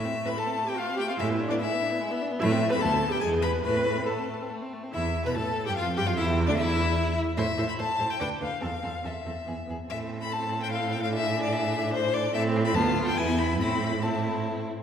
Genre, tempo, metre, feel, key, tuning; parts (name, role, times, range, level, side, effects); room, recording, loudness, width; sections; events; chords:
quick classical-period movement for string quartet; 138-150 BPM; 3/4; rubato; A minor; A4 = 442 Hz
rich violin; melody; 0.0-14.5 s; C5 to B5; -30 LUFS; left 4 dB
rich violin; second line; 0.0-14.7 s; G#3 to C5; -34 LUFS; left 2 dB
rich viola; accompaniment; 0.0-14.7 s; B3 to B4; -32 LUFS; equal
warm cello; bass; 0.0-14.7 s; D2 to B2; -29 LUFS; right 3 dB
wet scoring stage reverb, RT60 1.9 s; heard from further back in the room; -25 LUFS; side -8 dB against mid
0.0-4.9 A section; 4.9-14.8 A section
0.0 Am; 1.2 E7/A; 2.4 Am; 2.8 Gadd9/D; 3.2 E; 3.6 Am; 4.9 A5/E; 6.2 Dsus2; 7.4 Am; 8.2 Bdim/D; 8.6 Am/E; 9.5 E5; 9.9 Am; 11.1 E7/A; 12.3 Am; 12.8 Bdim/D; 13.2 E; 13.6 Am